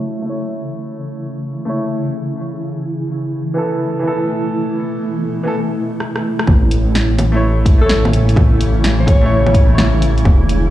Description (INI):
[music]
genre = future garage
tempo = 127 BPM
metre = 4/4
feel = swing 66% on 16ths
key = unclear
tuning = A4 = 440 Hz
[part]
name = bright upright piano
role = accompaniment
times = 0.0-10.3 s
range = E3 to C#5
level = -23 LUFS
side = equal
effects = sidechain pumping, tape echo
[part]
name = granular cloud pad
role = sustained chords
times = 0.0-10.7 s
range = B2 to G#4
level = -20 LUFS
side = equal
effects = built-in reverb, sidechain pumping
[part]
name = deep house drum kit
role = drums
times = 6.0-10.6 s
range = bongos, hi-hat, rim click, snare drum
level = -19 LUFS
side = equal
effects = none
[part]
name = dark detuned saw bass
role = bass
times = 6.5-10.7 s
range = E1 to A1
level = -14 LUFS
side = equal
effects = sidechain pumping
[part]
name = electronic kick drum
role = drums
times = 6.5-10.4 s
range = none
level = -12 LUFS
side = equal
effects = none
[part]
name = breathy alto saxophone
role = melody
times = 7.8-9.6 s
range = A4 to C#5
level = -21 LUFS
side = left 1 dB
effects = tape echo
[sound]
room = light reverb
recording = played on a big sound system in a bare room, cassette tape, large studio reverb, low-pass filter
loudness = -13 LUFS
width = side -14 dB against mid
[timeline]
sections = 0.0-6.5 A section; 6.5-10.7 B section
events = filter sweep on ambient pad 0.0-6.5; filter sweep 0.0-6.5; drum fill 6.0-6.5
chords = 0.0 A; 2.7 Esus4; 6.5 A